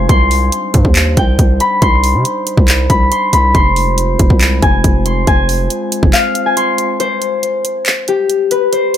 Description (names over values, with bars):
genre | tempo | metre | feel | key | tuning
hip hop, trap | 139 BPM | 4/4 | half-time | unclear | A4 = 439 Hz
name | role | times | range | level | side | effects
concert harp | melody | 0.0-9.0 s | G4 to C6 | -15 LUFS | left 3 dB | low-pass filter, ping-pong delay
glass harmonica | sustained chords | 0.0-7.0 s | G3 to C5 | -21 LUFS | right 1 dB | stereo widening
distorted 808-style bass | bass | 0.0-6.1 s | F1 to C3 | -14 LUFS | equal | distortion
trap drum kit | drums | 0.1-9.0 s | handclaps, hi-hat, kick drum | -13 LUFS | equal | none
room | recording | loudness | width
digital ambience | none | -10 LUFS | side -10 dB against mid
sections
0.0-7.0 A section; 7.0-9.0 B section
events
kick muted 6.1-7.0, 7.0-9.0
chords
0.1 Cmadd9; 3.5 Fm; 7.0 N.C.